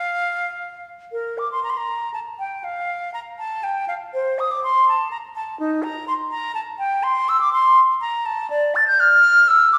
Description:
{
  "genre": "classical, baroque-style fantasia for unaccompanied flute",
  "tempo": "122 BPM",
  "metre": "3/4",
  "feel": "uneven beats, rubato",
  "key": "Bb major",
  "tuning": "A4 = 441 Hz",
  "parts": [
    { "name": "silver concert flute", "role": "solo", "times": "0.0-9.8 s", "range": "Eb4 to A6", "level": "-20 LUFS", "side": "equal", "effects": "none" }
  ],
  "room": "wet recital hall reverb, RT60 1.7 s",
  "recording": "recorded in a church or concert hall",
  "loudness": "-20 LUFS",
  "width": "mono",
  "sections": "0.0-1.1 A section; 1.1-9.8 A section",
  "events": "none",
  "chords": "none",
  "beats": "0.09 0.62 | 1.13 1.64 2.14 | 2.64 3.14 3.63 | 4.14 4.64 5.13 | 5.61 6.09 6.57 | 7.04 7.53 8.02 | 8.51 9.01 9.49"
}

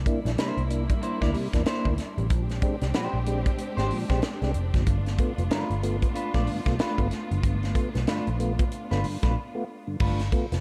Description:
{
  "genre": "funk",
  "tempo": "94 BPM",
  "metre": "4/4",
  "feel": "swing 60% on 16ths",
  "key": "G mixolydian",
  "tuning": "A4 = 441 Hz",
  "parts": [
    { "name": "warm studio string section", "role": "sustained chords", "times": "0.0-10.0 s", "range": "G3 to G4", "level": "-38 LUFS", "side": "equal", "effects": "none" },
    { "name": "vintage muted picked electric bass", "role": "bass", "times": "0.0-10.6 s", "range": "F1 to E2", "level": "-30 LUFS", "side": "equal", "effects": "none" },
    { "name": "tonewheel organ", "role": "stabs", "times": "0.1-10.6 s", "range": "G2 to G4", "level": "-35 LUFS", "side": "equal", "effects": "overdrive, chorus vibrato, slow rotary speaker" },
    { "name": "tight funk drum kit", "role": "drums", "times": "0.1-10.6 s", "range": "crash cymbal, hi-hat, kick drum, snare drum", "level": "-30 LUFS", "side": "equal", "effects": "none" },
    { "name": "clean electric guitar", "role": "accompaniment", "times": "0.4-10.2 s", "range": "Ab3 to D5", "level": "-36 LUFS", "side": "equal", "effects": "none" }
  ],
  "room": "light reverb, studio reverb",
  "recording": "dark, warm production",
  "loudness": "-26 LUFS",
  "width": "mono",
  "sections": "0.0-10.0 A section",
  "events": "break 9.4-10.0",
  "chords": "0.0 C9; 2.3 Bb13; 4.9 G9",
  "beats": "0.39 1.03 1.67 | 2.31 2.95 3.59 4.23 | 4.87 5.51 6.16 6.80 | 7.44 8.08 8.72 9.36 | 10.01"
}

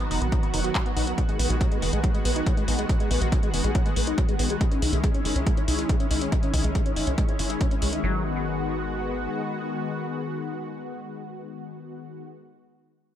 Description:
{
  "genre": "uplifting trance",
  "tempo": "140 BPM",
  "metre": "4/4",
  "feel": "straight",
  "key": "G# minor",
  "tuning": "A4 = 440 Hz",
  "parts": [
    { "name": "analog string pad", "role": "sustained chords", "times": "0.0-12.2 s", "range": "D#3 to F#4", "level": "-30 LUFS", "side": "left 1 dB", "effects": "ensemble chorus, sidechain pumping" },
    { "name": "liquid acid bass", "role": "arpeggios", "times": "0.0-8.2 s", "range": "F#3 to F#4", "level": "-31 LUFS", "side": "left 2 dB", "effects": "wide subtle chorus, sidechain pumping, digital delay" },
    { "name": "techno drum kit", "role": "drums", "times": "0.0-8.0 s", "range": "handclaps, hi-hat", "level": "-32 LUFS", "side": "left 1 dB", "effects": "none" },
    { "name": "tight sequencer bass", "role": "bass", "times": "0.1-9.3 s", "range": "F#1 to C#2", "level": "-28 LUFS", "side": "equal", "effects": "sidechain pumping" },
    { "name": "electronic kick drum", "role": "drums", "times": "0.3-7.7 s", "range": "none", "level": "-24 LUFS", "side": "equal", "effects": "none" }
  ],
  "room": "light reverb, digital ambience",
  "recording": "none",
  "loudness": "-22 LUFS",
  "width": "side -10 dB against mid",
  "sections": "0.0-8.0 A section; 8.0-11.5 B section",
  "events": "filter sweep on analog synth bass 0.0-8.0; filter sweep on acid bass 0.0-8.0",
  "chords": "0.0 B; 1.2 G#m7; 4.6 C#madd9; 8.0 G#m7",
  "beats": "0.32 0.75 | 1.18 1.61 2.04 2.46 | 2.89 3.32 3.75 4.18 | 4.61 5.04 5.46 5.89 | 6.32 6.75 7.18 7.61 | 8.04 8.46 8.89 9.32 | 9.75 10.18 10.61 11.04"
}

